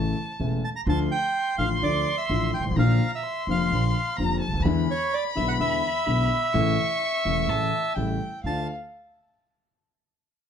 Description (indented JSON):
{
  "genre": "tango",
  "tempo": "127 BPM",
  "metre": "4/4",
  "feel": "rubato",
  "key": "D minor",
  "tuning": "A4 = 439 Hz",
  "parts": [
    { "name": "dark violin", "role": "second line", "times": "0.0-8.7 s", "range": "F5 to C#6", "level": "-31 LUFS", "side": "left 3 dB", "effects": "none" },
    { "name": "warm concert grand piano", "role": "accompaniment", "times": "0.0-8.6 s", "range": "E1 to F4", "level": "-27 LUFS", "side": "left 3 dB", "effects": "none" },
    { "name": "upright bass", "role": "bass", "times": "0.0-8.6 s", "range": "E1 to E2", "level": "-27 LUFS", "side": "right 1 dB", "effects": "none" },
    { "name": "bandoneon", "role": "melody", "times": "0.6-8.7 s", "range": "C#5 to Bb5", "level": "-27 LUFS", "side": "right 2 dB", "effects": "plate reverb" }
  ],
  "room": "moderate studio reverb, RT60 0.5 s",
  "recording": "dark, warm production",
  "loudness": "-22 LUFS",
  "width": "side -8 dB against mid",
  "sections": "0.0-8.4 A section; 8.4-10.3 B section",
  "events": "none",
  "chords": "0.0 A; 0.9 Dm; 2.8 Bb; 4.7 E7; 6.5 A; 8.0 A7; 8.4 Dm"
}